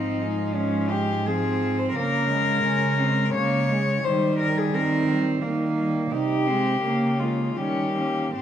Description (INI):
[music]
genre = classical, lyrical piece for cello ensemble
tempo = 86 BPM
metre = 3/4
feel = rubato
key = unclear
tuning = A4 = 440 Hz
[part]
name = warm cello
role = melody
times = 0.0-8.4 s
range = Db4 to Db5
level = -25 LUFS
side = left 4 dB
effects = none
[part]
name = rich cello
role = second line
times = 0.0-8.4 s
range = G3 to Eb4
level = -27 LUFS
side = right 5 dB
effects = none
[part]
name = rich cello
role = accompaniment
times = 0.0-8.4 s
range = F3 to Db4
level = -30 LUFS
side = left 2 dB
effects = none
[part]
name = dark cello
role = bass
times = 0.0-8.4 s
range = Ab2 to Eb3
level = -27 LUFS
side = right 2 dB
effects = none
[sound]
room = wet recital hall reverb, RT60 1.6 s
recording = none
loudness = -21 LUFS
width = side -10 dB against mid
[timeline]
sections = 0.0-8.4 A section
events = none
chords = 0.0 Fm/Ab; 1.9 Bbm7/Db; 4.0 Eb; 6.1 Ab/C; 6.8 Bbm/Db; 7.6 Eb7